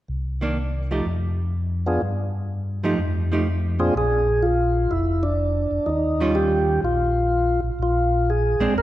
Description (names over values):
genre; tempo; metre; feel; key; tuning
jazz; 125 BPM; 4/4; swing 66% on 8ths; Bb mixolydian; A4 = 440 Hz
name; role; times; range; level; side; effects
mellow tonewheel organ; bass; 0.1-8.8 s; F1 to G2; -24 LUFS; equal; overdrive, chorus vibrato, slow rotary speaker
archtop guitar, miked and amplified; accompaniment; 0.4-8.8 s; Eb3 to G4; -26 LUFS; right 2 dB; none
percussive tonewheel organ; melody; 1.9-8.8 s; Bb2 to Bb4; -21 LUFS; equal; slow rotary speaker
room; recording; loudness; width
wet concert hall reverb, RT60 2.0 s; recorded in a church or concert hall; -20 LUFS; side -14 dB against mid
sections
0.1-4.0 A section; 4.0-8.8 B section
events
none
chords
0.1 Cm9; 1.1 N.C.; 2.0 F9/G; 3.0 F9; 4.0 Bb7; 5.9 Eb9; 7.8 Bb9